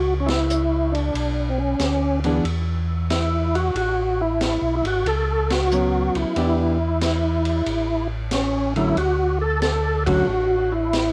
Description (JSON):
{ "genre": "soul jazz organ trio", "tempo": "92 BPM", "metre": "4/4", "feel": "swing 68% on 8ths", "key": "unclear", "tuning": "A4 = 440 Hz", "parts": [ { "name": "percussive tonewheel organ", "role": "melody", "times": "0.0-11.1 s", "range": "B#3 to A4", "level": "-24 LUFS", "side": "equal", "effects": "slow rotary speaker, overdrive, chorus vibrato, cassette tape" }, { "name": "tonewheel organ", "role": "bass", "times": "0.0-11.1 s", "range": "G#1 to E2", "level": "-26 LUFS", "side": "equal", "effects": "chorus vibrato, slow rotary speaker" }, { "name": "vintage drum kit", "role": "drums", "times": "0.3-11.1 s", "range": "hi-hat, kick drum, ride cymbal, snare drum", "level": "-32 LUFS", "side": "equal", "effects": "none" }, { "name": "hollow-body jazz guitar", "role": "accompaniment", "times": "2.2-10.3 s", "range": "D3 to G#4", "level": "-25 LUFS", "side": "equal", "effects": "cassette tape" } ], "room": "moderate studio reverb, RT60 0.6 s", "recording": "home recording on cassette", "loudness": "-22 LUFS", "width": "mono", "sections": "0.0-11.1 A section", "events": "band accent 0.2-0.5, 5.4-5.7, 9.9-10.3", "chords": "0.0 F#7(no3); 1.1 Bmadd9; 2.4 Esus2; 3.8 A69; 6.4 Em7; 7.7 Dmaj7" }